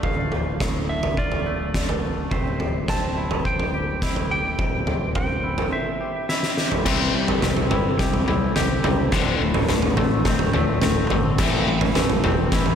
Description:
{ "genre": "post-rock", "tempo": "106 BPM", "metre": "4/4", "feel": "straight", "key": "unclear", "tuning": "A4 = 440 Hz", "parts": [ { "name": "clean lap steel guitar", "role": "melody", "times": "0.0-6.7 s", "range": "D5 to A5", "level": "-29 LUFS", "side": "right 1 dB", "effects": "digital delay" }, { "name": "pedal steel guitar", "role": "sustained chords", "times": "0.0-12.8 s", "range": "E3 to C5", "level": "-35 LUFS", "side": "right 1 dB", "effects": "none" }, { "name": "twangy electric guitar", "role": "arpeggios", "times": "0.0-12.8 s", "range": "D2 to C5", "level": "-29 LUFS", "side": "left 1 dB", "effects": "digital delay" }, { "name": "growling fingered electric bass", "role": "bass", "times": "0.0-12.8 s", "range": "D1 to C#2", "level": "-27 LUFS", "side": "equal", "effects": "overdrive" }, { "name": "oversized low-tuned drum kit", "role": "drums", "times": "0.0-12.8 s", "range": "crash cymbal, kick drum, snare drum, toms", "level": "-22 LUFS", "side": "right 1 dB", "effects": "none" }, { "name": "tight distorted guitar", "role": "riff", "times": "6.9-12.8 s", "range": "D2 to C4", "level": "-25 LUFS", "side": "left 8 dB", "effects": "distortion" } ], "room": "moderate lush hall reverb, RT60 2.3 s", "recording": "big arena sound", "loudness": "-19 LUFS", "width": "side -8 dB against mid", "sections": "0.0-6.9 A section; 6.9-12.8 B section", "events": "drum fill 6.3-6.9, 6.9-12.8; build-up 6.9-12.8", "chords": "0.0 Dm; 2.3 C/D; 6.9 Cmaj7; 9.1 Dm7; 11.4 Am7" }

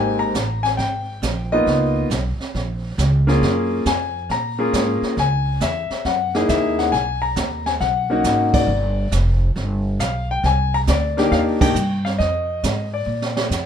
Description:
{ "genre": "jazz piano trio", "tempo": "137 BPM", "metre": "4/4", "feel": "swing 67% on 8ths", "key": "unclear", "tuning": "A4 = 439 Hz", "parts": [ { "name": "warm baby grand piano", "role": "melody", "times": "0.0-13.7 s", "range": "Ab2 to Bb5", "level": "-20 LUFS", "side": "left 3 dB", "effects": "none" }, { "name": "upright bass", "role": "bass", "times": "0.0-13.7 s", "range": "F1 to Bb2", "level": "-22 LUFS", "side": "right 1 dB", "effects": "none" }, { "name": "jazz brush drum kit", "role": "drums", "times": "0.3-13.7 s", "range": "brushed snare drum, crash cymbal, hi-hat, kick drum, snare drum", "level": "-24 LUFS", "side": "right 3 dB", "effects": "none" } ], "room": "moderate studio ambience, RT60 0.4 s", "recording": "minimal, uncompressed stereo recording", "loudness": "-17 LUFS", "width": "side -8 dB against mid", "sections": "0.0-13.7 A section", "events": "band accent 8.5, 11.5; drum fill 13.1-13.5", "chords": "0.0 Abmaj7sus2; 1.7 Db13; 3.4 Gbmaj9; 5.2 Dbm; 6.1 Gb13; 6.9 Bmaj7; 8.7 G7; 10.4 Cm9; 12.2 Fm7; 13.1 Bb" }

